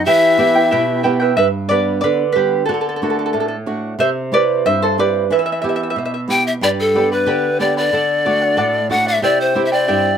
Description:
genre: andean folk, Andean ensemble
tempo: 92 BPM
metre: 2/4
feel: straight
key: unclear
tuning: A4 = 440 Hz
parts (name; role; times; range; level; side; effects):
- breathy bright pan flute; melody; 0.0-1.0, 6.3-10.2 s; A4 to G5; -15 LUFS; left 2 dB; none
- mellow large quena; second line; 0.0-1.0 s; E4; -21 LUFS; left 5 dB; none
- charango; accompaniment; 0.0-10.2 s; E4 to B5; -18 LUFS; right 3 dB; none
- flamenco guitar; accompaniment; 0.0-10.2 s; G2 to G4; -20 LUFS; right 2 dB; none
room: light reverb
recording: close, detailed microphones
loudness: -14 LUFS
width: side -8 dB against mid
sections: 0.0-1.4 A section; 1.4-6.6 B section; 6.6-10.2 C section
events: charango solo 1.4-6.6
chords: 0.1 Em; 1.4 G; 2.7 D; 4.0 C; 5.3 Em; 6.6 G; 7.9 D; 9.2 C

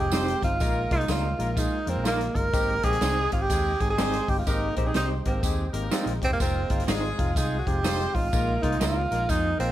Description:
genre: uptempo 1960s-style soul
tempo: 124 BPM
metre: 4/4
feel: swing 62% on 8ths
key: Ab major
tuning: A4 = 440 Hz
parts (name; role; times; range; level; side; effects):
- breathy tenor saxophone; melody; 0.0-9.7 s; Bb3 to Bb4; -28 LUFS; right 2 dB; none
- mellow horn section; second line; 0.0-9.7 s; Ab3 to C5; -35 LUFS; left 1 dB; none
- barky tine electric piano; accompaniment; 0.0-9.7 s; F3 to Ab4; -33 LUFS; left 2 dB; medium stereo tremolo
- mellow tonewheel organ; sustained chords; 0.0-9.7 s; Ab3 to G5; -40 LUFS; equal; none
- vintage muted fingered electric bass; bass; 0.0-9.7 s; Eb1 to F2; -30 LUFS; equal; none
- electric guitar through a small old amp; stabs; 0.1-8.9 s; Ab3 to C5; -31 LUFS; right 4 dB; tremolo
- swinging big-band drum kit; drums; 0.1-9.7 s; hi-hat, kick drum, snare drum; -29 LUFS; equal; none
- tambourine; percussion; 0.1-9.4 s; none; -39 LUFS; right 8 dB; none
room: light reverb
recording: none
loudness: -23 LUFS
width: side -13 dB against mid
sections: 0.0-9.7 A section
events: none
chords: 0.0 Fm7; 0.6 Bb7sus4; 2.5 Abmaj7; 6.4 Fm7; 8.3 Bb7sus4

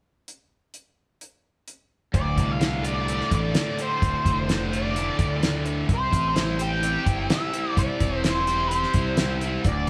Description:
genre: classic rock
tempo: 128 BPM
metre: 4/4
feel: straight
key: D minor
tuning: A4 = 438 Hz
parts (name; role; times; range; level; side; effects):
- damped 70s drum kit; drums; 0.3-9.9 s; hi-hat, kick drum, snare drum; -27 LUFS; equal; none
- cranked stack guitar; riff; 2.1-9.9 s; D2 to C5; -34 LUFS; equal; overdrive
- overdriven electric guitar; riff; 2.1-9.9 s; D2 to G4; -32 LUFS; equal; none
- growling fingered electric bass; bass; 2.1-9.9 s; D1 to D2; -31 LUFS; equal; overdrive
- bluesy overdriven lead guitar; melody; 2.2-9.9 s; C5 to G5; -30 LUFS; equal; wah, distortion
room: moderate studio reverb, RT60 0.8 s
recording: band playing live in one room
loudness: -24 LUFS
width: mono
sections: 0.3-2.1 A section; 2.1-9.9 B section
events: none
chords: 0.3 N.C.; 2.1 Dm; 5.9 C

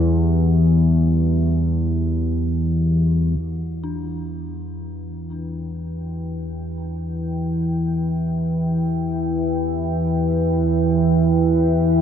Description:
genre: dark ambient drone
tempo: free time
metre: none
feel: none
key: E minor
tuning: A4 = 440 Hz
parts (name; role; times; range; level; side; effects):
- dark detuned synth bell; arpeggios; 0.0-12.0 s; D4 to E4; -40 LUFS; left 6 dB; chorus, diffuse ambient delay
- analog drone; drone; 0.0-12.0 s; E2 to E3; -19 LUFS; equal; chorus
- quartz singing bowl; texture; 0.0-12.0 s; E3 to G4; -38 LUFS; right 2 dB; none
- deep dark ambient pad; sustained chords; 5.3-12.0 s; E4 to G5; -28 LUFS; equal; chorus, built-in reverb
room: moderate huge ambient reverb, RT60 7.1 s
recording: none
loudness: -18 LUFS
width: side -8 dB against mid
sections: 0.0-3.4 A section; 3.4-12.0 B section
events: fade-in on ambient pad 3.4-12.0; fade-in on synth bell 3.4-12.0; filter sweep on synth drone 3.4-12.0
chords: 0.0 Em

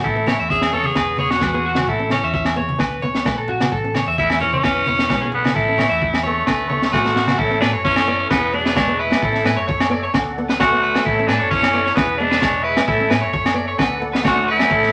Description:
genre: highlife guitar band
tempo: 131 BPM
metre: 4/4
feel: straight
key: A major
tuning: A4 = 439 Hz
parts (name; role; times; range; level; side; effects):
- raspy tenor saxophone; melody; 0.0-14.9 s; A3 to A4; -21 LUFS; equal; none
- growling alto saxophone; second line; 0.0-14.9 s; D3 to C#4; -34 LUFS; equal; none
- flamenco guitar; accompaniment; 0.0-14.9 s; F#3 to D4; -30 LUFS; equal; none
- electric guitar at the edge of break-up; arpeggios; 0.0-14.9 s; F#4 to E5; -25 LUFS; equal; none
- hollow-body short-scale fingered electric bass; bass; 0.0-14.9 s; E1 to A2; -31 LUFS; equal; none
- crunchy breakbeat drum kit; drums; 0.0-14.9 s; kick drum, snare drum; -25 LUFS; equal; none
- agogo bells; percussion; 0.3-14.7 s; none; -28 LUFS; equal; none
- congas; percussion; 0.3-7.4 s; none; -31 LUFS; equal; none
- musette accordion; sustained chords; 7.4-14.9 s; G#4 to F#5; -32 LUFS; equal; none
room: moderate studio reverb, RT60 0.9 s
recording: vinyl crackle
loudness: -18 LUFS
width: mono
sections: 0.0-7.4 A section; 7.4-14.9 B section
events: drum fill 6.9-7.4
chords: 0.0 A; 1.0 E; 1.9 A; 2.8 D; 3.7 A; 4.6 E; 5.6 A; 6.5 D; 7.4 A; 8.3 E; 9.2 A; 10.1 D; 11.1 A; 12.0 E; 12.9 A; 13.8 D

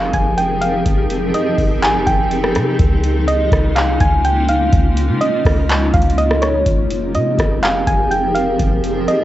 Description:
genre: hip hop, atmospheric cloud-rap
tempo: 124 BPM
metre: 4/4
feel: half-time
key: F minor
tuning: A4 = 440 Hz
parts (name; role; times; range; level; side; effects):
- soft round pluck; melody; 0.0-9.2 s; Db5 to Ab5; -19 LUFS; right 1 dB; chorus, low-pass filter, cassette tape, analog delay
- granular cloud pad; sustained chords; 0.0-9.2 s; F3 to Bb4; -19 LUFS; left 1 dB; built-in reverb, sidechain pumping, cassette tape
- soft 808-style bass; bass; 0.0-9.1 s; F1 to Db3; -19 LUFS; equal; none
- booming analog drum machine; drums; 0.1-9.2 s; handclaps, hi-hat, kick drum, rim click; -18 LUFS; equal; cassette tape
room: digital ambience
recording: home recording on cassette, nothing above 7.9 kHz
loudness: -13 LUFS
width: side -14 dB against mid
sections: 0.0-9.2 A section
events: none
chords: 0.0 Fm11; 2.8 Db69; 6.7 Fm11

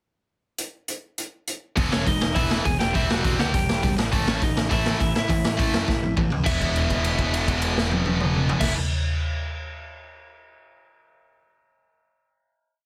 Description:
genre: punk rock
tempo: 205 BPM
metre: 4/4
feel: straight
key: E major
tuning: A4 = 438 Hz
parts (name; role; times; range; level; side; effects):
- raw garage drum kit; drums; 0.6-8.7 s; crash cymbal, hi-hat, kick drum, snare drum, toms; -26 LUFS; equal; none
- tight distorted guitar; riff; 1.8-8.8 s; A2 to E4; -30 LUFS; equal; distortion
- tight distorted guitar; riff; 1.8-8.8 s; E2 to C4; -33 LUFS; equal; distortion
- fuzz picked electric bass; bass; 1.8-8.7 s; E1 to A2; -30 LUFS; equal; overdrive
- lightly driven lead guitar; melody; 1.9-8.7 s; C#4 to G#5; -31 LUFS; equal; none
room: light reverb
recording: dense, heavily limited modern master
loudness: -23 LUFS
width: mono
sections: 0.6-1.8 pickup bar; 1.8-6.5 verse; 6.5-8.8 final chord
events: drum fill 5.9-6.5; held note 6.5-8.6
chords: 0.6 N.C.; 1.8 E; 2.8 C/E; 4.1 A5; 6.5 E

